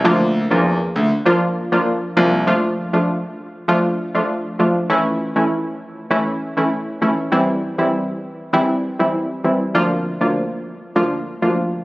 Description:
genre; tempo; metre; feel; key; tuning
dancehall; 99 BPM; 4/4; straight; D minor; A4 = 438 Hz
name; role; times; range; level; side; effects
glassy wavetable pluck; accompaniment; 0.0-11.6 s; D2 to F4; -17 LUFS; equal; chorus
clear concert grand piano; bass; 0.0-2.4 s; C2 to E2; -18 LUFS; equal; none
room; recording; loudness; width
moderate lush hall reverb, RT60 2.8 s; recorded on a phone in the room; -16 LUFS; side -20 dB against mid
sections
0.0-2.5 A section; 2.5-11.8 B section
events
none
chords
0.0 Bb/D; 2.5 Dm; 4.9 A; 7.3 C; 9.7 Bb/D

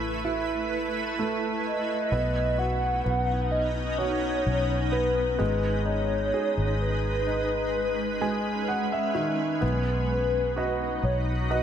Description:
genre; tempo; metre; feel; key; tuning
pop; 64 BPM; 4/4; straight; unclear; A4 = 440 Hz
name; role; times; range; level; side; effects
warm concert grand piano; accompaniment; 0.0-11.6 s; D#3 to G#5; -30 LUFS; right 2 dB; none
shimmering ambient pad; sustained chords; 0.0-11.6 s; G#3 to B4; -31 LUFS; equal; chorus, built-in reverb
vintage muted fingered electric bass; bass; 0.0-11.6 s; G#1 to B1; -29 LUFS; equal; none
hollow clarinet-like synth lead; melody; 1.7-11.6 s; B4 to F#5; -29 LUFS; left 1 dB; chorus, tremolo
room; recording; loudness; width
moderate recital hall reverb, RT60 1.6 s; none; -24 LUFS; side -9 dB against mid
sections
0.0-9.6 A section; 9.6-11.6 B section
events
grand piano fill 7.8-9.6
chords
0.0 Asus2; 2.1 Badd9; 5.4 G#m; 9.6 B

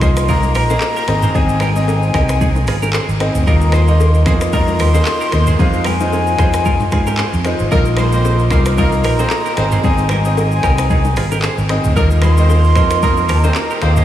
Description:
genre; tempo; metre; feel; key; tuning
afrobeats; 113 BPM; 4/4; swing 55% on 16ths; unclear; A4 = 440 Hz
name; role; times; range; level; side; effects
breathy mellow silver concert flute; melody; 0.0-14.0 s; Eb5 to C6; -22 LUFS; left 1 dB; tape echo
bright grand piano; accompaniment; 0.0-14.0 s; Ab3 to Eb5; -20 LUFS; left 2 dB; none
clean electric guitar; riff; 0.0-14.0 s; Eb4 to C5; -25 LUFS; right 4 dB; vibrato effect, tape echo
fingered electric bass; bass; 0.0-14.0 s; Ab1 to Ab2; -15 LUFS; equal; none
afro-pop drum kit; drums; 0.0-14.0 s; finger snaps, handclaps, hi-hat, kick drum, rim click, shaker, toms; -19 LUFS; equal; none
congas and bongos; percussion; 0.3-14.0 s; none; -25 LUFS; left 5 dB; none
clear horn section; second line; 7.7-13.9 s; Bb3 to C5; -26 LUFS; equal; none
room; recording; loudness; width
moderate huge ambient reverb, RT60 6.9 s; dreamy mix soaked in reverb, studio reverb; -12 LUFS; side -12 dB against mid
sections
0.0-14.0 A section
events
none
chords
0.0 Bbsus4; 1.1 Ab; 3.5 Ebsus2; 5.6 Fm7; 7.7 Bbsus4; 9.6 Ab; 12.0 Ebsus2

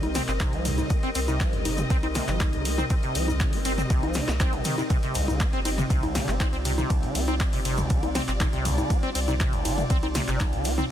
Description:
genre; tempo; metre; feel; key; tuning
acid house; 120 BPM; 4/4; straight; C minor; A4 = 440 Hz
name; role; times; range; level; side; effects
dark analog pad; sustained chords; 0.0-10.9 s; G3 to Bb4; -35 LUFS; right 1 dB; chorus, phaser, sidechain pumping
acid bass, saw; riff; 0.0-10.8 s; C2 to Eb4; -30 LUFS; equal; overdrive, wide subtle chorus, dub echo
round analog bass; bass; 0.0-10.8 s; G1 to C2; -29 LUFS; equal; tube saturation, sidechain pumping
punchy analog drum machine; drums; 0.0-10.9 s; congas, handclaps, hi-hat, ride cymbal, snare drum, toms; -30 LUFS; left 1 dB; overdrive
dark studio string section; texture; 0.0-10.9 s; C4 to Eb5; -35 LUFS; left 2 dB; sidechain pumping
tube shaker; percussion; 0.1-10.9 s; none; -41 LUFS; left 2 dB; none
electronic kick drum; drums; 0.4-10.5 s; none; -25 LUFS; equal; overdrive
room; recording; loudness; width
little or no reverb; dense, heavily limited modern master; -23 LUFS; side -10 dB against mid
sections
0.0-10.9 A section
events
none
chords
0.0 Cm7

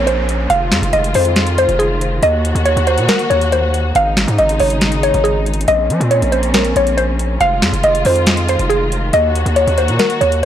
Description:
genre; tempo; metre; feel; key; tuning
hip hop, trap; 139 BPM; 4/4; half-time; Bb minor; A4 = 440 Hz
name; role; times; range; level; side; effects
mallet-like synth pluck; melody; 0.0-10.4 s; Ab4 to F5; -15 LUFS; equal; chorus, phaser, low-pass filter, tape echo
dark studio string section; sustained chords; 0.0-10.4 s; Db3 to Gb4; -21 LUFS; left 1 dB; none
distorted 808-style bass; bass; 0.0-10.4 s; F1 to F3; -17 LUFS; equal; distortion
downlifter; sound effects; 0.0-2.2 s; none; -30 LUFS; equal; none
booming analog drum machine; drums; 0.1-10.4 s; hi-hat, snare drum; -19 LUFS; equal; none
room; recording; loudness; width
light reverb; blown-out, overdriven recording, overdrive; -12 LUFS; side -10 dB against mid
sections
0.0-10.4 A section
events
none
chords
0.0 Bbmadd9; 0.5 Fm7; 2.2 Ebm; 4.0 Absus4; 5.7 Bbmadd9; 7.4 Fm7; 9.1 Ebm

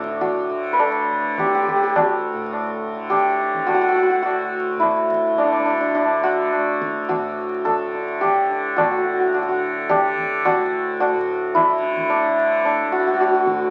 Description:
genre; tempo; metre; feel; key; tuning
indian classical, Hindustani; 106 BPM; 3/4; straight; D raga khamaj; A4 = 440 Hz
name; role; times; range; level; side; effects
santur; melody; 0.0-13.7 s; D4 to B4; -22 LUFS; equal; none
tanpura; drone; 0.0-13.7 s; D2 to D3; -27 LUFS; equal; none
tabla; percussion; 0.1-13.7 s; none; -28 LUFS; equal; none
room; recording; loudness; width
wet studio reverb, RT60 0.7 s; very old 78 rpm record, vinyl crackle, nothing above 10.7 kHz; -20 LUFS; mono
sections
0.0-8.8 A section; 8.8-13.7 B section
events
speeding up 0.0-13.7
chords
none

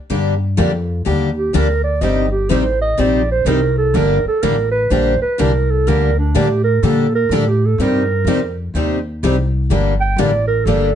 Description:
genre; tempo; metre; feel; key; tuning
acoustic string swing (jazz manouche); 125 BPM; 4/4; swing 64% on 8ths; G minor; A4 = 438 Hz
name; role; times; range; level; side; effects
picked steel-string acoustic guitar; accompaniment; 0.1-10.9 s; C3 to G4; -19 LUFS; left 6 dB; none
picked steel-string acoustic guitar; accompaniment; 0.1-10.9 s; C3 to G4; -23 LUFS; right 6 dB; none
upright bass; bass; 0.1-10.9 s; G1 to Bb2; -18 LUFS; equal; none
breathy clarinet; second line; 1.4-10.9 s; D4 to G5; -18 LUFS; right 4 dB; none
room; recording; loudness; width
light reverb; nothing above 10.6 kHz; -14 LUFS; side -9 dB against mid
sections
0.1-10.9 A section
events
clarinet solo 0.1-10.9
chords
0.1 Gm; 2.0 Cm; 4.0 Gm; 7.8 Cm; 9.7 Gm

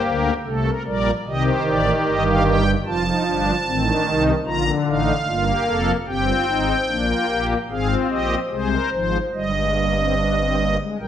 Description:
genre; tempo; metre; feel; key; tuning
classical, baroque-style 4-part fugue for pipe organ; 74 BPM; 4/4; straight; Eb major from 6.1 s; A4 = 440 Hz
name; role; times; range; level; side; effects
pipe organ, strings celeste; solo; 0.0-11.1 s; F1 to Bb5; -18 LUFS; equal; none
room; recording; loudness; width
wet recital hall reverb, RT60 1.4 s; none; -18 LUFS; side -10 dB against mid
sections
0.0-11.1 A section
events
none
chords
0.0 Gm; 1.2 Cm; 2.9 F; 4.5 Bb; 6.1 Gm; 7.7 Ab; 9.3 Eb/G

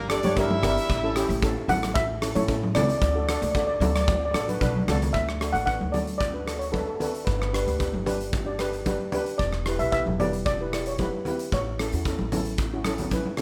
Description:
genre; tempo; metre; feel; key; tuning
calypso; 113 BPM; 4/4; straight; D major; A4 = 440 Hz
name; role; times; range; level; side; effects
bright horn section; second line; 0.0-1.4 s; D4 to E5; -30 LUFS; equal; none
upright bass; bass; 0.0-13.2 s; E1 to A2; -32 LUFS; equal; none
steel pan; accompaniment; 0.1-13.4 s; C#4 to D5; -32 LUFS; equal; none
big rock drum kit; drums; 0.1-13.4 s; hi-hat, kick drum, rim click; -32 LUFS; equal; none
congas; percussion; 0.2-13.4 s; none; -33 LUFS; equal; none
steel pan; melody; 1.7-12.0 s; A4 to F#5; -30 LUFS; equal; plate reverb
room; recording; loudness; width
moderate small room ambience, RT60 0.5 s; none; -26 LUFS; mono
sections
0.0-5.1 A section; 5.1-13.4 B section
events
drum fill 4.5-5.1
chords
0.0 Gm6; 0.9 A; 3.0 D; 5.1 D6; 7.3 G; 9.4 Em; 11.5 A

